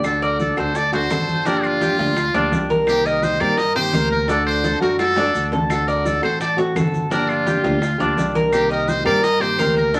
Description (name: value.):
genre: latin, Cuban son and guajira.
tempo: 170 BPM.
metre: 4/4.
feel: straight.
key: unclear.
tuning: A4 = 438 Hz.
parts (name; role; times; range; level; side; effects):
nylon-string guitar; accompaniment; 0.0-10.0 s; C3 to G4; -26 LUFS; equal; none.
Cuban tres; arpeggios; 0.0-10.0 s; D4 to Eb5; -24 LUFS; equal; none.
upright bass; bass; 0.0-10.0 s; G1 to G2; -30 LUFS; equal; none.
bongos; percussion; 0.0-10.0 s; none; -32 LUFS; equal; none.
claves; percussion; 0.0-9.8 s; none; -35 LUFS; equal; none.
congas; percussion; 0.0-10.0 s; none; -30 LUFS; equal; none.
maracas; percussion; 0.0-10.0 s; none; -45 LUFS; equal; none.
trumpet with metal mute; melody; 0.1-10.0 s; F4 to Eb5; -24 LUFS; equal; none.
room: wet studio reverb, RT60 0.6 s.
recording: vinyl crackle.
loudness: -19 LUFS.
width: mono.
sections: 0.0-10.0 A section.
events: drum fill 5.0-5.7.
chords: 0.0 D; 1.5 Gm7; 2.9 Cm7; 4.3 D; 5.7 D7; 7.1 Gm7; 8.5 Cm7.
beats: | 0.05 0.40 0.75 1.11 | 1.46 1.81 2.17 2.52 | 2.88 3.23 3.58 3.94 | 4.29 4.64 5.00 5.35 | 5.70 6.05 6.41 6.76 | 7.12 7.47 7.82 8.17 | 8.53 8.88 9.23 9.59 | 9.94.